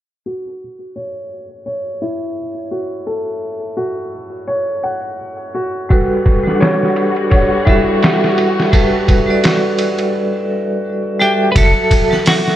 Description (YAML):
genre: trip hop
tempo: 85 BPM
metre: 4/4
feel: swing 57% on 16ths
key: F# phrygian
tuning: A4 = 443 Hz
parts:
  - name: felt-muted upright piano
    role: arpeggios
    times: 0.3-11.6 s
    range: E4 to F#5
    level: -21 LUFS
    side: equal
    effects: low-pass filter, tape echo
  - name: vibraphone with hard mallets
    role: accompaniment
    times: 5.9-12.6 s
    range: F#3 to F#5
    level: -16 LUFS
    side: right 1 dB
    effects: tremolo, tape echo
  - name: dark studio string section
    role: sustained chords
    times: 5.9-10.1 s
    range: G3 to F#4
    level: -20 LUFS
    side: left 1 dB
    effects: none
  - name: trip hop sampler-style drum kit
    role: drums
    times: 5.9-12.6 s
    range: hi-hat, kick drum, ride cymbal, snare drum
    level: -15 LUFS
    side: equal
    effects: vintage 12-bit sampler grit
  - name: clean electric guitar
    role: melody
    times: 11.2-12.6 s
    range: F#4 to B4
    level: -15 LUFS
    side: left 1 dB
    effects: tremolo
  - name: soft dub sub bass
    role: bass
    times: 11.6-11.7 s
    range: F#1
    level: -13 LUFS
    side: equal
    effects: none
room: light reverb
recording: low-pass filter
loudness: -13 LUFS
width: side -12 dB against mid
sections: 0.3-11.6 A section; 11.6-12.6 B section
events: filter sweep on felt piano 0.3-11.6; filter sweep 0.3-11.6; break 10.1-11.6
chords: 0.3 F#m7; 5.9 Gmaj9; 11.6 F#m7